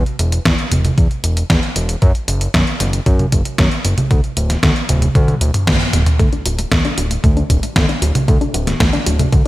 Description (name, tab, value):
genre	italo disco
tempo	115 BPM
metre	4/4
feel	straight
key	unclear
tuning	A4 = 443 Hz
part	fat analog bass	bass	0.0-9.4 s	D1 to F#2	-18 LUFS	equal	tube saturation
part	detuned 8-bit digital drum machine	drums	0.1-9.5 s	congas, hi-hat, snare drum, toms	-17 LUFS	equal	overdrive, gated reverb
part	electronic kick drum	drums	0.5-9.4 s	none	-15 LUFS	equal	overdrive
part	analog pluck	arpeggios	6.2-9.5 s	A3 to F#4	-22 LUFS	left 2 dB	chorus, digital delay
room	light reverb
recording	bright 1980s-style digital production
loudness	-13 LUFS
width	side -17 dB against mid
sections	0.0-6.2 A section; 6.2-9.5 B section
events	drum fill 5.2-6.2; band accent 5.7; filter sweep on synth arpeggio sound 6.2-9.5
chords	0.0 N.C.; 6.2 D